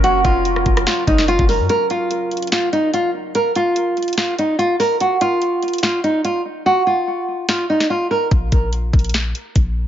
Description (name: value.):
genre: hip hop, trap.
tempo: 145 BPM.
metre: 4/4.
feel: half-time.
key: unclear.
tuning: A4 = 441 Hz.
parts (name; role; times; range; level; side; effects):
nylon-string guitar; melody; 0.0-8.3 s; Eb4 to Bb4; -17 LUFS; right 1 dB; analog delay.
felt-muted upright piano; accompaniment; 0.0-1.7 s; none; barely audible; none; none.
deep dark ambient pad; sustained chords; 0.0-1.7 s; Gb3 to Bb4; -27 LUFS; left 1 dB; chorus, built-in reverb.
clean 808-style bass; bass; 0.0-1.7, 8.3-9.9 s; F1 to Gb2; -20 LUFS; left 1 dB; none.
trap drum kit; drums; 0.0-9.7 s; hi-hat, kick drum, rim click, snare drum; -19 LUFS; equal; none.
room: light reverb.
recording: echo-heavy mix, nothing above 7.5 kHz.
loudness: -15 LUFS.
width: side -10 dB against mid.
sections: 0.0-1.7 A section; 1.7-9.9 B section.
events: break 1.7-8.3; hi-hats muted 6.7-8.3.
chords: 0.0 Gb; 1.7 N.C..